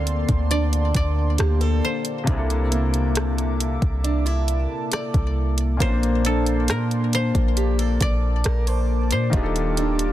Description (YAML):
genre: contemporary R&B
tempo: 68 BPM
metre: 4/4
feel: straight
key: Bb major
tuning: A4 = 442 Hz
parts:
  - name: koto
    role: melody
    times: 0.0-10.1 s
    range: A4 to F5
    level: -29 LUFS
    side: left 2 dB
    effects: ping-pong delay
  - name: clear baby grand piano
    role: accompaniment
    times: 0.0-10.1 s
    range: Bb2 to C5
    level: -30 LUFS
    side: left 3 dB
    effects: none
  - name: chorused pulse-width pad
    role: sustained chords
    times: 0.0-10.1 s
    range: Bb3 to D6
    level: -28 LUFS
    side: left 3 dB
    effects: none
  - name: fingerpicked acoustic archtop guitar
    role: arpeggios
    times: 0.0-10.1 s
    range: C3 to C5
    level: -29 LUFS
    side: right 6 dB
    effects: none
  - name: clean 808-style bass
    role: bass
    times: 0.0-10.1 s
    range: Eb1 to Bb2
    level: -22 LUFS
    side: equal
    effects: none
  - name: smooth R&B drum kit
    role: drums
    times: 0.1-10.1 s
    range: hi-hat, kick drum, rim click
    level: -24 LUFS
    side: equal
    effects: none
room: little or no reverb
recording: dense, heavily limited modern master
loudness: -19 LUFS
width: side -13 dB against mid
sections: 0.0-10.1 A section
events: none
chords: 0.0 Bbmaj9/D; 2.3 C13; 5.8 Bbmaj9; 9.3 Ebmaj9#11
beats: 0.51 1.39 | 2.27 3.16 4.04 4.92 | 5.80 6.68 7.57 8.45 | 9.33